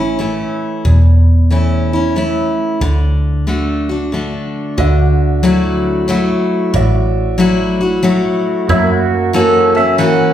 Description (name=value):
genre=honky-tonk and classic country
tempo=92 BPM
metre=3/4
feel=swing 66% on 8ths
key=D major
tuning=A4 = 438 Hz
part: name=picked steel-string acoustic guitar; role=accompaniment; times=0.0-10.3 s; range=E2 to F#4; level=-14 LUFS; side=left 1 dB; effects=none
part: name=vintage muted picked electric bass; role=bass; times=0.0-10.2 s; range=E1 to F#2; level=-14 LUFS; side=equal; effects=none
part: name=clear concert grand piano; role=accompaniment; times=4.8-10.3 s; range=A#3 to E5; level=-21 LUFS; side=right 5 dB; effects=none
part: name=pedal steel guitar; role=second line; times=8.7-10.3 s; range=E4 to F#5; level=-14 LUFS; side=right 3 dB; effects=none
room=wet large studio reverb, RT60 1.2 s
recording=heard from further back in the room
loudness=-11 LUFS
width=side -11 dB against mid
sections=0.0-4.8 A section; 4.8-10.3 B section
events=none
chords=0.0 A; 2.8 D; 4.8 Dadd9; 8.7 F#7